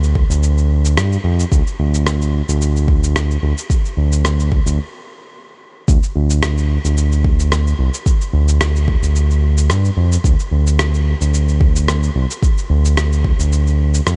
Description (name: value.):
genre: organic downtempo.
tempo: 110 BPM.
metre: 4/4.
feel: swing 54% on 16ths.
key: unclear.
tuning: A4 = 440 Hz.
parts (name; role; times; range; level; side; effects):
smooth synth bass; bass; 0.0-14.2 s; C2 to G2; -16 LUFS; equal; sidechain pumping.
electronic cabasa and rim click; drums; 0.0-14.2 s; none; -27 LUFS; equal; none.
electronic kick drum; drums; 0.2-13.4 s; none; -17 LUFS; equal; none.
room: little or no reverb.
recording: nothing above 10.8 kHz.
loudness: -16 LUFS.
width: mono.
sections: 0.0-5.9 A section; 5.9-14.2 A section.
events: stop 4.8-5.9.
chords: none.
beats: 0.43 0.97 | 1.52 2.06 2.61 3.15 | 3.70 4.25 4.79 5.34 | 5.88 6.43 6.97 7.52 | 8.06 8.61 9.15 9.70 | 10.25 10.79 11.34 11.88 | 12.43 12.97 13.52 14.06.